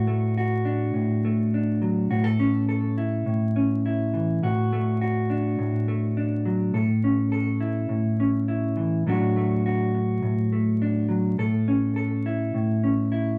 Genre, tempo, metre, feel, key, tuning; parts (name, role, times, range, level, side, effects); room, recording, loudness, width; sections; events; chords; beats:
highlife; 103 BPM; 4/4; straight; A major; A4 = 440 Hz
mellow electric guitar; solo; 0.0-13.4 s; A2 to A4; -24 LUFS; equal
wet club ambience, RT60 0.5 s; vinyl crackle; -24 LUFS; mono
0.0-11.4 A section; 11.4-13.4 A section
0.0 D/A; 2.1 A; 4.4 D/A; 6.7 A; 9.1 D/A; 11.4 A
0.35 0.93 1.51 | 2.10 2.68 3.26 3.84 | 4.42 5.00 5.58 6.16 | 6.74 7.32 7.90 8.48 | 9.06 9.64 10.22 10.80 | 11.38 11.96 12.54 13.12